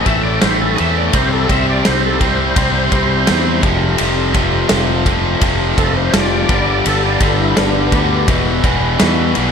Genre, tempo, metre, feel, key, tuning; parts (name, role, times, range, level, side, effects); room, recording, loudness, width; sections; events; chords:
classic rock; 84 BPM; 4/4; straight; A4 = 440 Hz
overdriven tonewheel organ; melody; 0.0-8.3 s; B3 to E5; -20 LUFS; equal; chorus vibrato, slow rotary speaker, slapback echo
bright tonewheel organ; sustained chords; 0.0-9.5 s; G3 to C5; -28 LUFS; right 1 dB
biting overdriven guitar; riff; 0.0-9.5 s; E2 to C4; -19 LUFS; left 14 dB
cranked stack guitar; riff; 0.0-9.5 s; E2 to C4; -19 LUFS; right 14 dB; overdrive
growling fingered electric bass; bass; 0.1-9.5 s; E1 to E2; -19 LUFS; equal; overdrive
big rock drum kit; drums; 0.1-9.5 s; kick drum, ride cymbal, snare drum; -18 LUFS; equal
small room ambience; -12 LUFS; side -6 dB against mid
0.0-9.5 A section
tonewheel organ solo 0.0-9.5
0.0 Am; 1.1 C; 3.6 Fadd9; 6.5 G; 8.3 Em